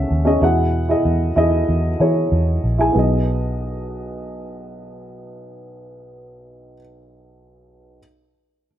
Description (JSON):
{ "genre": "pop", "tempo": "95 BPM", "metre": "4/4", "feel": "straight", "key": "B major", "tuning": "A4 = 440 Hz", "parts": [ { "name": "dark upright piano", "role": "accompaniment", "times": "0.0-8.0 s", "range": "B1 to G#5", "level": "-20 LUFS", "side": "equal", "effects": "none" }, { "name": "vintage muted fingered electric bass", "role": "bass", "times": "0.0-6.8 s", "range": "A#1 to E3", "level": "-19 LUFS", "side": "equal", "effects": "none" } ], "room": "light reverb, studio ambience", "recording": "none", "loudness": "-16 LUFS", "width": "side -11 dB against mid", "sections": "0.0-2.9 A section; 2.9-5.5 B section", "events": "none", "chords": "0.4 Eadd9; 2.9 B6" }